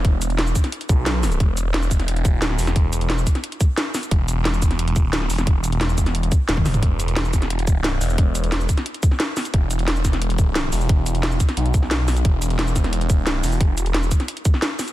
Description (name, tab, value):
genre	dark technical drum and bass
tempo	177 BPM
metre	4/4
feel	straight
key	unclear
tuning	A4 = 439 Hz
part	phased detuned saw bass	bass	0.0-14.1 s	E1 to B1	-21 LUFS	equal	phaser, tube saturation, sidechain pumping
part	drum and bass drum kit	drums	0.0-14.9 s	hi-hat, shaker, snare drum, toms	-24 LUFS	equal	none
part	electronic kick drum	drums	0.0-14.5 s	none	-18 LUFS	equal	none
room	little or no reverb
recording	dense, heavily limited modern master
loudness	-18 LUFS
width	side -15 dB against mid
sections	0.0-6.8 A section; 6.8-14.9 A section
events	drop 0.0-6.8, 6.8-14.9; drum fill 6.6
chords	none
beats	| 0.05 0.39 0.72 1.06 | 1.40 1.74 2.08 2.42 | 2.76 3.10 3.44 3.78 | 4.12 4.45 4.79 5.13 | 5.47 5.81 6.15 6.49 | 6.83 7.17 7.50 7.84 | 8.18 8.52 8.86 9.20 | 9.54 9.88 10.22 10.55 | 10.89 11.23 11.57 11.91 | 12.25 12.59 12.93 13.27 | 13.61 13.95 14.28 14.62